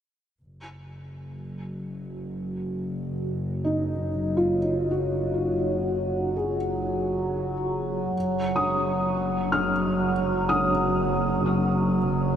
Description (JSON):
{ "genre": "ambient", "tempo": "free time", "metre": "none", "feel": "none", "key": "unclear", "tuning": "A4 = 440 Hz", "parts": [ { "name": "warm chamber double bass section", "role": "bass", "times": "0.4-12.4 s", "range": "F#1", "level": "-29 LUFS", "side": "equal", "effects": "none" }, { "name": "overtone-sweeping drone", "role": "drone", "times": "1.4-12.4 s", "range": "F#3", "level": "-28 LUFS", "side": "right 1 dB", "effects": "chorus, built-in reverb, phaser" }, { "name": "felt-muted upright piano", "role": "arpeggios", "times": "3.6-12.4 s", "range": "D#4 to E#6", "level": "-26 LUFS", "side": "equal", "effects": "tape echo, shimmer reverb" } ], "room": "wet huge ambient reverb, RT60 7.8 s", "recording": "none", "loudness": "-23 LUFS", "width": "side -9 dB against mid", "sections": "0.4-12.4 A section", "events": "fade-in on felt piano 0.4-12.4; fade-in on double bass section 0.4-12.4; fade-in on synth drone 0.4-12.4", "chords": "0.4 F#sus2" }